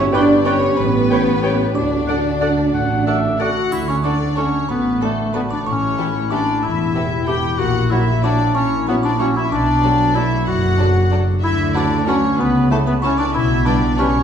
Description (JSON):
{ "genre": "cinematic, playful, whimsical film cue", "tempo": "62 BPM (dotted quarters)", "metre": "6/8", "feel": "straight", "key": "D major", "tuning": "A4 = 439 Hz", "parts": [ { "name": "music box", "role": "melody", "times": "0.0-14.2 s", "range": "A5 to G6", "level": "-27 LUFS", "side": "right 2 dB", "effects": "none" }, { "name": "mellow hollow concert flute", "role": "second line", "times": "0.0-3.4 s", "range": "B4 to D5", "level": "-26 LUFS", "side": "left 3 dB", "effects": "none" }, { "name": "warm studio violin section", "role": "second line", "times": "0.0-14.1 s", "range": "F#4 to A5", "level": "-29 LUFS", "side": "left 3 dB", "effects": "none" }, { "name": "mellow French horn section", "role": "sustained chords", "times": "0.0-3.4 s", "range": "B3 to G4", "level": "-24 LUFS", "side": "left 3 dB", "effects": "none" }, { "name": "concert harp", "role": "arpeggios", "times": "0.0-14.2 s", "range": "G2 to B4", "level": "-24 LUFS", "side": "left 6 dB", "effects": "none" }, { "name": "dark chamber cello section", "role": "bass", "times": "0.0-14.1 s", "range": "E2 to D4", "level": "-22 LUFS", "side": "right 2 dB", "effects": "none" }, { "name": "dark studio double bass section", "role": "bass", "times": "0.0-14.1 s", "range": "E1 to D2", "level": "-22 LUFS", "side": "right 3 dB", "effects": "none" }, { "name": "dark tuba", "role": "bass", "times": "0.0-3.5 s", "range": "G1 to D2", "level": "-28 LUFS", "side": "right 3 dB", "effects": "none" }, { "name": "rich studio violin section", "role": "melody", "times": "0.1-14.2 s", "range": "A4 to G5", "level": "-29 LUFS", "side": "left 3 dB", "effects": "none" }, { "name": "bright clarinet", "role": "second line", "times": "0.1-14.2 s", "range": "A3 to F#5", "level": "-20 LUFS", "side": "left 2 dB", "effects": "none" }, { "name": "clear oboe", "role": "second line", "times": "0.1-3.5 s", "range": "F#5 to G5", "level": "-30 LUFS", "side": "right 3 dB", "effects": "none" }, { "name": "dark studio viola section", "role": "accompaniment", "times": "0.1-14.1 s", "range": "E3 to D5", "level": "-27 LUFS", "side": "right 1 dB", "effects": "none" }, { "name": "triangle", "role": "percussion", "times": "3.7-5.0 s", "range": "none", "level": "-43 LUFS", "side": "left 2 dB", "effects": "none" } ], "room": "wet recital hall reverb, RT60 1.5 s", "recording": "recorded in a church or concert hall", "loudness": "-15 LUFS", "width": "side -8 dB against mid", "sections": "0.0-3.7 A section; 3.7-14.2 B section", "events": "none", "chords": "0.0 G; 0.8 A9; 1.8 D; 5.7 A9; 7.6 F#7/A#; 9.5 Bm7; 11.4 Bm/D (rootless); 12.4 A/C#; 13.3 G/B", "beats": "0.78 | 1.75 2.73 | 3.72 4.69 | 5.65 6.62 | 7.58 8.55 | 9.51 10.46 | 11.43 12.39 | 13.35" }